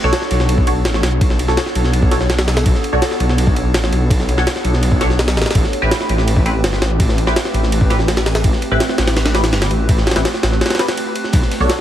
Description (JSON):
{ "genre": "drum and bass, jungle", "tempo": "166 BPM", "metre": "4/4", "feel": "straight", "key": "unclear", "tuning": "A4 = 440 Hz", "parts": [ { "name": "warbly tape-like pad", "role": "sustained chords", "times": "0.0-11.8 s", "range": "A3 to C#5", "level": "-24 LUFS", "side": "right 1 dB", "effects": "chorus, built-in reverb" }, { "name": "band-passed chord stab", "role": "stabs", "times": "0.0-11.8 s", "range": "C4 to C#5", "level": "-23 LUFS", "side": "equal", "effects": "phaser, wide subtle chorus, dub echo" }, { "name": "detuned saw bass", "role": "bass", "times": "0.0-11.7 s", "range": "G1 to B1", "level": "-17 LUFS", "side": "equal", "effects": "none" }, { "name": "jungle sampler-style drum kit", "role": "drums", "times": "0.1-11.8 s", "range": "kick drum, ride cymbal, snare drum", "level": "-17 LUFS", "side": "equal", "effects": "none" }, { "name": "crunchy breakbeat drum kit", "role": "drums", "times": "11.3-11.8 s", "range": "hi-hat, snare drum", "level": "-30 LUFS", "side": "left 2 dB", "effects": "high-pass filter on hats, high-pass filter on snare, high-pass filter on room" } ], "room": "light reverb, digital ambience", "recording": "heavily compressed radio sound", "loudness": "-13 LUFS", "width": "side -11 dB against mid", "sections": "0.0-11.8 A section", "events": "break 10.6-11.3", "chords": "0.0 Bm9; 5.6 Am9" }